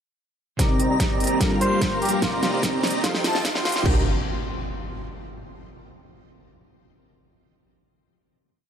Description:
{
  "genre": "future bass",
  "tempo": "147 BPM",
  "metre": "4/4",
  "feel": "half-time",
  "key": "C dorian",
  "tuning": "A4 = 440 Hz",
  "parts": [
    { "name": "glassy digital keys", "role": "accompaniment", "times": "0.6-4.0 s", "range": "C3 to D6", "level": "-31 LUFS", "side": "right 2 dB", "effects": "chorus, vintage 12-bit sampler grit, sidechain pumping, ping-pong delay" },
    { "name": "airy breathy pad", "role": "sustained chords", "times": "0.9-4.0 s", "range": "Eb3 to G4", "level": "-34 LUFS", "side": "equal", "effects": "none" },
    { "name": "airy dreamy lead", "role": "arpeggios", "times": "0.6-4.0 s", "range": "A5 to C6", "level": "-31 LUFS", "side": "equal", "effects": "chorus, sidechain pumping" },
    { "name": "dense compressed supersaw", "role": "riff", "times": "0.6-4.0 s", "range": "G3 to C6", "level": "-26 LUFS", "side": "equal", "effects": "sidechain pumping, low-pass filter" },
    { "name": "saturated sub bass", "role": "bass", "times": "0.6-4.0 s", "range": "G1 to G2", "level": "-35 LUFS", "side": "equal", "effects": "none" },
    { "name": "big-room dance drum kit", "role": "drums", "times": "0.6-3.9 s", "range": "crash cymbal, hi-hat, snare drum", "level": "-27 LUFS", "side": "equal", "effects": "none" },
    { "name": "electronic kick drum", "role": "drums", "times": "0.6-3.9 s", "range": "none", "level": "-25 LUFS", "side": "equal", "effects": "none" },
    { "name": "riser and impact", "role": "sound effects", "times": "2.4-5.5 s", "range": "none", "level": "-32 LUFS", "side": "equal", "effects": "none" },
    { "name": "trumpet with cup mute", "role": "melody", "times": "1.6-3.8 s", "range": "F4 to C5", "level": "-30 LUFS", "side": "left 1 dB", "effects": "sidechain pumping, dub echo" }
  ],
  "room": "light reverb",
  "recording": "high-pass filter, lossy compression artefacts",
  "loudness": "-20 LUFS",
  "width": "side -8 dB against mid",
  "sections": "0.6-3.9 build; 3.9-5.5 final chord",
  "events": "build-up 0.6-3.9; drum fill 0.6-3.9; filter sweep on supersaw synth 0.6-3.9; filter sweep 0.6-3.9",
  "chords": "0.6 Cm7; 1.4 Gm7; 2.2 Cm7; 3.0 F7; 3.9 Cm7"
}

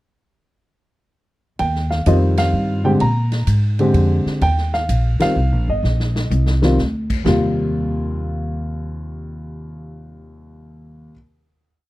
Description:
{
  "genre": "jazz piano trio",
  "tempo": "127 BPM",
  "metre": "3/4",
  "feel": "swing 67% on 8ths",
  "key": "Eb major",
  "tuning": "A4 = 440 Hz",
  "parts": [
    { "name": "warm grand piano", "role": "melody", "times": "1.6-11.1 s", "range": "Eb2 to Bb5", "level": "-20 LUFS", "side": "equal", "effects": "none" },
    { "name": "upright bass", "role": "bass", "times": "1.6-11.1 s", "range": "G1 to Bb2", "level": "-19 LUFS", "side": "equal", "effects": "none" },
    { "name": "swinging big-band drum kit", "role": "drums", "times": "1.6-7.4 s", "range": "crash cymbal, hi-hat, kick drum, ride cymbal, snare drum, toms", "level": "-28 LUFS", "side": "equal", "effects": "none" }
  ],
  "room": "little or no reverb",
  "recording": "dry, close 1970s-style studio recording",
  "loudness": "-16 LUFS",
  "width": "side -18 dB against mid",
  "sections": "1.6-7.3 A section; 7.3-10.1 final chord",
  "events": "band accent 2.3, 5.1; drum fill 5.8-6.8",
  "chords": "1.6 Eb69; 3.0 Bb13; 4.4 Eb69"
}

